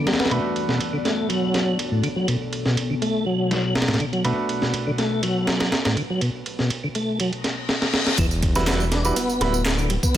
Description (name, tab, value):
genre	breakbeat, breaks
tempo	122 BPM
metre	4/4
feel	straight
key	unclear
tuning	A4 = 439 Hz
part	deep dark ambient pad	sustained chords	0.0-10.2 s	B2 to D5	-30 LUFS	left 2 dB	chorus, built-in reverb, vintage 12-bit sampler grit, sidechain pumping
part	tonewheel organ	riff	0.0-10.1 s	A2 to D4	-24 LUFS	equal	chorus vibrato, slow rotary speaker, dub echo
part	clear grand piano	stabs	0.0-9.5 s	G3 to B4	-28 LUFS	right 2 dB	dub echo
part	breakbeat sampler-style drum kit	drums	0.1-10.2 s	kick drum, ride cymbal, snare drum	-24 LUFS	equal	low-pass filter on cymbals, low-pass filter on snare, low-pass filter on kick
part	reverse cymbal and impact	sound effects	7.4-10.1 s	none	-29 LUFS	left 3 dB	none
part	fat analog bass	bass	8.2-10.2 s	D1 to E1	-24 LUFS	equal	none
part	electronic tambourine and handclaps	drums	8.2-10.2 s	none	-30 LUFS	right 2 dB	none
room	light reverb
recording	none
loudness	-20 LUFS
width	side -11 dB against mid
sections	0.0-8.2 A section; 8.2-10.2 B section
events	reverse cymbal 7.4-8.2; drum fill 7.7-8.2; drop 8.2-10.2; impact 8.2-10.1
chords	0.3 Bm7; 8.2 Emadd9